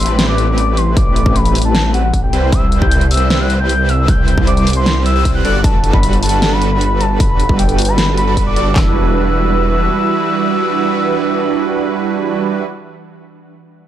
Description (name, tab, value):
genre	future bass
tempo	154 BPM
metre	4/4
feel	half-time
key	E minor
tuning	A4 = 440 Hz
part	soft octave-layered synth lead	melody	0.0-12.6 s	F#5 to G6	-19 LUFS	left 2 dB	chorus, tremolo, sidechain pumping, tape echo
part	ethereal airy pad	sustained chords	0.0-12.6 s	C3 to F#5	-26 LUFS	equal	ensemble chorus, built-in reverb, phaser, sidechain pumping
part	big bright polysynth	riff	0.0-12.6 s	G3 to D5	-18 LUFS	right 4 dB	lush chorus, sidechain pumping
part	wide detuned saw bass	bass	0.0-9.9 s	E1 to C2	-15 LUFS	equal	chorus, sidechain pumping
part	big-room dance drum kit	drums	0.0-8.6 s	hi-hat, snare drum	-19 LUFS	equal	small room ambience
part	big-room dance drum kit	drums	1.0-8.8 s	handclaps, kick drum, snare drum	-15 LUFS	equal	small room ambience
room	light reverb, digital ambience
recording	dark, warm production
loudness	-11 LUFS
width	side -11 dB against mid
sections	0.0-8.8 A section; 8.8-11.9 B section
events	drop 0.0-8.8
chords	0.0 Am9; 2.3 Cmaj7; 5.4 Gmaj9; 8.8 Em9